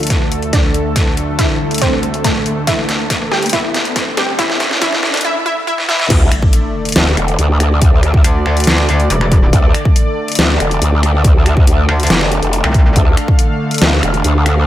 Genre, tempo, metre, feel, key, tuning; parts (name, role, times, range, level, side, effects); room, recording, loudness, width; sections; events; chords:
heavy wobble dubstep; 140 BPM; 4/4; half-time; D minor; A4 = 442 Hz
wide unison pluck; melody; 0.0-6.1 s; A3 to G5; -19 LUFS; equal; dub echo
lush unison pad; sustained chords; 0.0-14.7 s; D2 to F5; -20 LUFS; equal; chorus, sidechain pumping
dubstep drum kit; drums; 0.0-14.5 s; crash cymbal, finger snaps, hi-hat, snare drum; -17 LUFS; left 1 dB; high-pass filter on hats, high-pass filter on snare, high-pass filter on cymbals, high-pass filter on room
riser and sub drop; sound effects; 0.7-7.8 s; -24 LUFS; equal
warbly tape-like pad; texture; 0.0-5.2 s; D4 to D5; -32 LUFS; right 2 dB
electronic kick drum; drums; 0.1-13.4 s; -12 LUFS; equal
growl bass; bass; 6.1-14.7 s; E1 to D2; -13 LUFS; equal; chorus, overdrive
metallic wobble bass; bass; 8.2-12.9 s; E1 to D2; -13 LUFS; equal; chorus, overdrive
light reverb; high-pass filter; -11 LUFS; side -13 dB against mid
0.0-6.1 A section; 6.1-14.7 B section
build-up 0.0-6.1; drum fill 0.0-5.2, 5.8-6.1; filter sweep on synth pluck 0.0-6.1; filter sweep 0.0-6.1; riser 0.7-5.2; drop 6.1-14.7; impact 6.1-7.8
0.0 D5